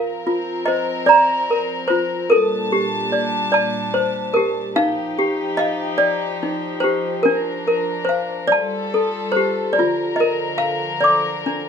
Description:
children's music, lullaby; 48 BPM (dotted quarters); 6/8; straight; Bb major; A4 = 440 Hz
toy piano; melody; 0.0-11.7 s; D4 to D6; -18 LUFS; equal
warm chamber string section; sustained chords; 0.0-11.7 s; Bb2 to A5; -25 LUFS; left 1 dB
moderate studio reverb, RT60 0.6 s; band playing live in one room; -17 LUFS; side -7 dB against mid
0.0-11.7 A section
0.0 Bbsus2; 2.3 Gmadd9/Bb; 4.8 Ebadd9; 7.3 Bb/F; 8.5 Fadd9; 9.8 Bb
1.08 | 2.32 3.54 | 4.78 6.01 | 7.25 8.51 | 9.77 11.03

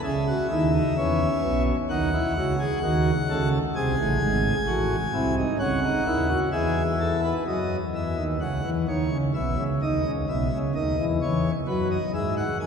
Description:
classical, baroque-style 3-part fugue for pipe organ; 64 BPM; 4/4; straight; F# minor; A4 = 440 Hz
pipe organ, principal chorus; solo; 0.0-12.7 s; G#1 to G#5; -22 LUFS; equal
wet cathedral reverb, RT60 5.6 s; heard from further back in the room; -22 LUFS; side -6 dB against mid
0.0-7.5 A section; 7.5-12.7 B section
0.0 C#m; 1.9 F#m13/C#; 3.7 G#7; 5.6 C#m; 7.5 F#5; 9.3 B; 11.2 E
| 0.03 0.96 1.89 2.81 | 3.74 4.67 5.60 6.53 | 7.47 8.41 9.35 10.29 | 11.22 12.15

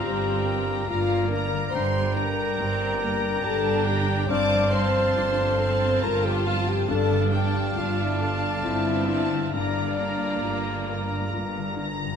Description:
cinematic, emotional film score for orchestra; 69 BPM; 3/4; rubato; A4 = 440 Hz
rich studio violin section; melody; 0.0-12.2 s; A5 to Bb5; -34 LUFS; left 2 dB
clear clarinet; second line; 0.0-11.9 s; C5 to D5; -38 LUFS; left 2 dB
concert flute; second line; 0.0-11.9 s; A5 to Bb5; -36 LUFS; left 2 dB
dark cor anglais; second line; 0.0-11.9 s; F5 to G5; -34 LUFS; right 3 dB
warm studio violin section; second line; 0.0-11.3 s; D5 to D6; -35 LUFS; left 1 dB
dark baby grand piano; accompaniment; 0.0-12.2 s; G2 to Bb4; -34 LUFS; left 3 dB
rich studio viola section; accompaniment; 0.0-11.8 s; G3 to F4; -32 LUFS; right 3 dB
warm French horn section; sustained chords; 0.0-11.3 s; D4 to D5; -27 LUFS; left 3 dB
concert harp; arpeggios; 0.0-12.2 s; G2 to D5; -36 LUFS; left 11 dB
rich studio cello section; bass; 0.0-12.1 s; G2; -30 LUFS; right 3 dB
rich studio double bass section; bass; 0.0-12.1 s; G1; -31 LUFS; right 3 dB
moderate scoring stage reverb, RT60 1.8 s; -22 LUFS; side -7 dB against mid
0.0-12.2 A section
0.0 Bb/G; 1.7 Gm; 4.3 F/G; 6.9 Dm/G; 9.5 Bb/G
0.04 0.89 | 1.74 2.59 3.44 | 4.30 5.16 6.02 | 6.89 7.77 8.65 | 9.54 10.44 11.33

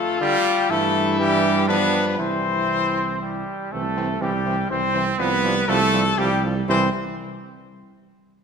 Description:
classical, brass quintet; 120 BPM; 3/4; straight; C major; A4 = 440 Hz
dark trumpet; melody; 0.0-6.9 s; G4 to C5; -24 LUFS; left 6 dB
warm trumpet; second line; 0.0-6.9 s; G3 to C4; -25 LUFS; right 7 dB
clear French horn; accompaniment; 0.0-6.9 s; G3 to F4; -26 LUFS; left 4 dB
clear trombone; accompaniment; 0.2-6.9 s; D3 to F3; -30 LUFS; right 3 dB
mellow tuba; bass; 0.7-6.9 s; C2 to G2; -25 LUFS; right 4 dB
wet concert hall reverb, RT60 2.0 s; -18 LUFS; side -6 dB against mid
0.0-3.7 A section; 3.7-6.7 B section; 6.7-8.2 C section
0.0 Dm; 0.7 Emadd11/G; 1.7 G7; 2.2 C; 5.2 G7/C; 6.7 C
0.21 | 0.70 1.19 1.69 | 2.19 2.70 3.21 | 3.72 4.21 4.70 | 5.19 5.68 6.18 | 6.68

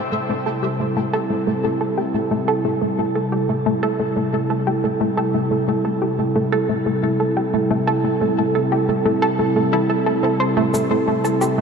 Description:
ambient, sequencer-driven space music; 89 BPM; 4/4; straight; A minor; A4 = 438 Hz
sweeping resonant pad; sustained chords; 0.0-11.6 s; C3 to A4; -20 LUFS; right 1 dB; chorus, shimmer reverb
analog pluck; riff; 0.0-11.6 s; A3 to C5; -21 LUFS; equal; chorus, ping-pong delay, shimmer reverb
cabasa; percussion; 10.7-11.6 s; -34 LUFS; left 1 dB; ping-pong delay
wet huge ambient reverb, RT60 7.9 s; dark, warm production; -17 LUFS; side -6 dB against mid
0.0-11.6 A section
0.0 Am7
0.63 1.30 1.98 | 2.65 3.33 4.00 4.67 | 5.35 6.02 6.70 7.37 | 8.05 8.72 9.39 10.07 | 10.74 11.42

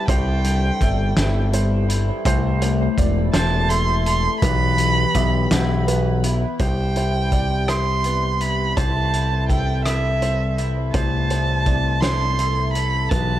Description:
post-rock; 55 BPM (dotted quarters); 6/8; straight; C major; A4 = 440 Hz
dark violin; melody; 0.0-13.4 s; E5 to C6; -24 LUFS; right 3 dB; digital delay
clear French horn section; sustained chords; 0.0-13.4 s; C3 to A4; -32 LUFS; left 1 dB
electric guitar through a small old amp; arpeggios; 0.0-13.4 s; C2 to A4; -27 LUFS; left 5 dB; analog chorus, digital delay
felt-muted upright piano; arpeggios; 0.0-13.4 s; B3 to E5; -31 LUFS; right 6 dB; digital delay
overdriven picked electric bass; bass; 0.1-13.4 s; E1 to C2; -20 LUFS; equal
loose indie drum kit; drums; 0.1-13.3 s; hi-hat, kick drum, rim click, snare drum; -24 LUFS; equal
light reverb, small room reverb; dark, warm production; -17 LUFS; side -13 dB against mid
0.0-6.6 A section; 6.6-13.4 B section
0.0 C; 2.3 Am; 4.4 Em/B; 6.6 C; 10.9 Am/C
| 0.09 1.17 | 2.26 3.35 | 4.43 5.52 | 6.60 7.69 | 8.77 9.86 | 10.95 12.03 | 13.12

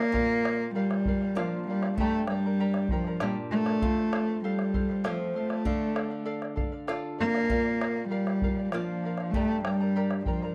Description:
andean folk, Andean ensemble; 98 BPM; 3/4; straight; A4 = 440 Hz
warm cello; melody; 0.0-10.5 s; F3 to Bb3; -30 LUFS; equal
charango; accompaniment; 0.0-10.5 s; G4 to Bb5; -40 LUFS; equal
flamenco guitar; accompaniment; 0.1-10.5 s; F2 to A4; -39 LUFS; equal
bombo; percussion; 0.1-10.5 s; -36 LUFS; equal
light reverb; dry, close 1970s-style studio recording; -28 LUFS; mono
0.1-10.5 A section
0.1 Bb; 2.0 Gm; 3.8 F; 5.7 Dm; 7.5 Bb; 9.3 Gm
| 0.14 0.75 1.36 | 1.98 2.59 3.21 | 3.82 4.43 5.05 | 5.66 6.27 6.89 | 7.50 8.11 8.73 | 9.34 9.95

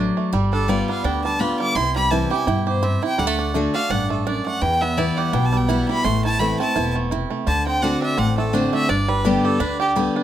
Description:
bluegrass; 168 BPM; 4/4; swing 56% on 8ths; G major; A4 = 436 Hz
picked steel-string acoustic guitar; accompaniment; 0.0-10.2 s; E2 to G4; -22 LUFS; left 3 dB
bluegrass banjo; arpeggios; 0.0-10.2 s; D3 to G4; -24 LUFS; right 7 dB
upright bass; bass; 0.0-10.1 s; E1 to G2; -25 LUFS; equal
clear fiddle; melody; 0.5-9.9 s; G4 to D6; -24 LUFS; equal
moderate studio reverb, RT60 0.5 s; close, detailed microphones; -18 LUFS; side -11 dB against mid
0.0-10.2 A section
fiddle solo 0.0-10.2
0.3 G7; 1.8 C; 3.2 D; 4.6 Em; 6.0 Am; 7.5 D7; 8.9 G
| 0.33 0.68 1.04 1.40 | 1.76 2.12 2.47 2.83 | 3.19 3.54 3.90 4.26 | 4.62 4.97 5.33 5.68 | 6.04 6.40 6.75 7.11 | 7.47 7.82 8.18 8.54 | 8.89 9.25 9.60 9.96

